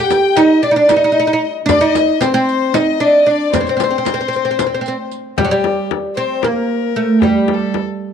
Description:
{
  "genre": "Turkish makam ensemble",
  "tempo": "228 BPM (eighths)",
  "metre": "7/8",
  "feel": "straight",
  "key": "C makam nikriz",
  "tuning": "A4 = 441 Hz",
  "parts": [
    { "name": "oud", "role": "melody", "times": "0.0-7.8 s", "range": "F#3 to G4", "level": "-14 LUFS", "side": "right 2 dB", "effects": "none" },
    { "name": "rich chamber violin section", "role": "second line", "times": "0.0-5.1 s", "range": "C5 to G5", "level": "-22 LUFS", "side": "left 12 dB", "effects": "none" },
    { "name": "rich violin", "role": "second line", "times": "0.0-7.8 s", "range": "G4 to G5", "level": "-21 LUFS", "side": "left 13 dB", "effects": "none" },
    { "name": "frame drum", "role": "percussion", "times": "0.1-7.9 s", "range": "none", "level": "-21 LUFS", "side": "left 9 dB", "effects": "none" },
    { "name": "riq", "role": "percussion", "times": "0.1-5.2 s", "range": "none", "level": "-26 LUFS", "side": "right 16 dB", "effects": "none" }
  ],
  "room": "light reverb, small room ambience",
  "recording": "1960s-style stereo with parts hard left and right",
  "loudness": "-12 LUFS",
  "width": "side -8 dB against mid",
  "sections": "0.0-5.4 A section; 5.4-8.1 B section",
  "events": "none",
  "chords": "none"
}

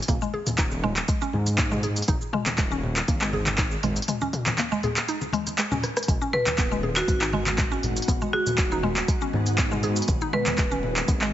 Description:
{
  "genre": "afro house",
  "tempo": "120 BPM",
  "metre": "4/4",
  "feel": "swing 53% on 16ths",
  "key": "G# minor",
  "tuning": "A4 = 438 Hz",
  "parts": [
    { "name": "deep house drum kit", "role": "drums", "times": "0.0-11.3 s", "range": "handclaps, hi-hat, rim click, shaker, toms", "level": "-27 LUFS", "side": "equal", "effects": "none" },
    { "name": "mallet-like synth pluck", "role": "arpeggios", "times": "0.1-11.3 s", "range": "G#3 to G#4", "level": "-30 LUFS", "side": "equal", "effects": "chorus, sidechain pumping, tape echo" },
    { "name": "dark detuned saw bass", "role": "bass", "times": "0.1-11.3 s", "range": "D#1 to G#2", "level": "-29 LUFS", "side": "equal", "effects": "sidechain pumping" },
    { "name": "electronic kick drum", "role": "drums", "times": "0.1-11.2 s", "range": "none", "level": "-26 LUFS", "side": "equal", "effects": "none" },
    { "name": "congas", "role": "percussion", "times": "0.1-11.3 s", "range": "none", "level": "-32 LUFS", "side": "left 1 dB", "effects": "none" },
    { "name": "ethereal airy pad", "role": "sustained chords", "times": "7.4-11.3 s", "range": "D#3 to G#4", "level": "-34 LUFS", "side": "equal", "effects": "ensemble chorus, built-in reverb, phaser, sidechain pumping" },
    { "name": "marimba with hard mallets", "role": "melody", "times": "6.3-10.6 s", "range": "F#4 to B4", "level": "-28 LUFS", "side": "equal", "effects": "tape echo" }
  ],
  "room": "light reverb, digital ambience",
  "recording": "heavily compressed radio sound, multiband compression, nothing above 7.7 kHz",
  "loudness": "-22 LUFS",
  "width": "side -12 dB against mid",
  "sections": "0.0-11.3 A section",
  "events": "drum fill 5.8",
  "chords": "0.0 D#5; 6.1 G#m7"
}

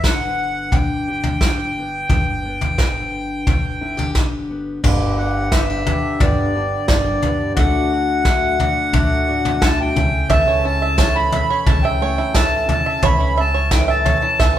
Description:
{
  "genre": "indie folk with a building arrangement",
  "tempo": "88 BPM",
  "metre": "4/4",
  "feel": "straight",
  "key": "unclear",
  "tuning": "A4 = 439 Hz",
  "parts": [
    { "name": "accordion", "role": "melody", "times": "0.0-14.6 s", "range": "D5 to B5", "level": "-21 LUFS", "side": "equal", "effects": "none" },
    { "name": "fingerpicked steel-string acoustic guitar", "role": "accompaniment", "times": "0.0-14.6 s", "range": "D2 to A4", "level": "-26 LUFS", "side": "left 3 dB", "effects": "none" },
    { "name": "upright bass", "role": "bass", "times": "0.0-14.6 s", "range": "G1 to C#3", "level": "-25 LUFS", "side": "equal", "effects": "none" },
    { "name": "soft brush drum kit", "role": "drums", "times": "0.0-14.6 s", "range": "crash cymbal, kick drum, snare drum, toms", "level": "-18 LUFS", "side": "equal", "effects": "none" },
    { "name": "picked twelve-string acoustic guitar", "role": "accompaniment", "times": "4.8-14.6 s", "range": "G2 to A4", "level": "-25 LUFS", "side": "left 1 dB", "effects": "none" },
    { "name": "bluegrass banjo", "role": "arpeggios", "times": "10.3-14.6 s", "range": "E4 to E5", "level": "-22 LUFS", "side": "right 8 dB", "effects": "none" },
    { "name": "tambourine", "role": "percussion", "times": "11.0-13.9 s", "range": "none", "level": "-35 LUFS", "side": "left 4 dB", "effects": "none" }
  ],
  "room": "moderate large studio reverb, RT60 1.2 s",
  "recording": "band playing live in one room",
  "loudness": "-15 LUFS",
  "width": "side -11 dB against mid",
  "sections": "0.0-4.8 A section; 4.8-14.6 B section",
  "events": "drum fill 14.4",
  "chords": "0.0 G; 7.6 D; 10.0 A/C#"
}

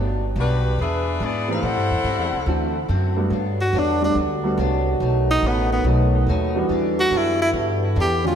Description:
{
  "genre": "jazz, big band swing",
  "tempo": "142 BPM",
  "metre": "4/4",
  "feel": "swing 65% on 8ths",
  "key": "G major",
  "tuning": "A4 = 444 Hz",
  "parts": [
    { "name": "picked acoustic archtop guitar", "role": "accompaniment", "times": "0.0-8.3 s", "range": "G2 to G#4", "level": "-29 LUFS", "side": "left 4 dB", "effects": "analog chorus" },
    { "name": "upright bass", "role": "bass", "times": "0.0-8.4 s", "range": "G1 to A2", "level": "-22 LUFS", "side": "equal", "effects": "none" },
    { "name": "warm saxophone section", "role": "melody", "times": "0.4-2.7 s", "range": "G3 to F#5", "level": "-25 LUFS", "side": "left 2 dB", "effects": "diffuse ambient delay" },
    { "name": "warm grand piano", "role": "accompaniment", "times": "1.5-8.4 s", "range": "D3 to G4", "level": "-27 LUFS", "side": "right 1 dB", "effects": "analog chorus" },
    { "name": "dark trombone section", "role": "sustained chords", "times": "3.3-8.4 s", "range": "D3 to F#4", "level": "-27 LUFS", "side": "equal", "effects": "none" },
    { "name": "warm tenor saxophone", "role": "melody", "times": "3.6-8.4 s", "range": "B3 to G4", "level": "-22 LUFS", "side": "right 1 dB", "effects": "diffuse ambient delay" }
  ],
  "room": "moderate lush hall reverb, RT60 2.3 s",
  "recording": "dreamy mix soaked in reverb",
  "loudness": "-18 LUFS",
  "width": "side -8 dB against mid",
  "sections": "0.0-3.3 A section; 3.3-8.4 B section",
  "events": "tenor saxophone solo 3.3-8.4",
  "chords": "0.0 Gmaj7; 0.8 E7; 1.6 Am7; 2.5 D7; 3.3 Gmaj7; 5.0 B7; 6.7 Em7"
}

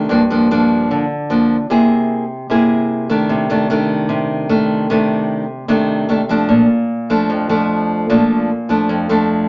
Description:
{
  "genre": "bossa nova",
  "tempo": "150 BPM",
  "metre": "4/4",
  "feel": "straight",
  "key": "unclear",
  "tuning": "A4 = 440 Hz",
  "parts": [
    { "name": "nylon-string guitar", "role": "solo", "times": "0.0-9.5 s", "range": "F2 to G#4", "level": "-16 LUFS", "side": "equal", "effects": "none" }
  ],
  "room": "wet club reverb, RT60 0.7 s",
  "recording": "nothing above 7.5 kHz",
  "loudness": "-16 LUFS",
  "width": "mono",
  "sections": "0.0-9.5 A section",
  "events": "none",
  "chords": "0.1 Gm7; 1.7 C7alt; 3.3 F6/C (rootless); 6.5 Bbmaj7"
}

